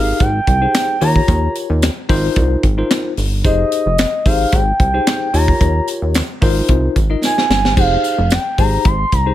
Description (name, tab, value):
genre	early-eighties boogie funk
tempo	111 BPM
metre	4/4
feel	straight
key	F minor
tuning	A4 = 440 Hz
part	gliding portamento lead	melody	0.0-9.3 s	Eb5 to C6	-18 LUFS	right 1 dB	chorus, phaser
part	bell-like tine electric piano	accompaniment	0.0-9.3 s	Eb4 to Eb5	-21 LUFS	left 4 dB	medium stereo tremolo
part	chorused synth bass	bass	0.0-9.3 s	F1 to Eb2	-16 LUFS	equal	none
part	tight funk drum kit	drums	0.2-9.3 s	crash cymbal, handclaps, hi-hat, kick drum, snare drum	-17 LUFS	equal	none
part	tambourine	percussion	0.2-9.3 s	none	-32 LUFS	right 11 dB	none
room	small room ambience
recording	none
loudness	-13 LUFS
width	side -13 dB against mid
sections	0.0-9.3 A section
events	drum fill 7.2-7.8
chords	0.0 Fm9; 1.0 Eb7; 2.1 Ab6; 3.4 Fm9; 5.3 Eb7; 6.4 Ab6; 7.8 Fm9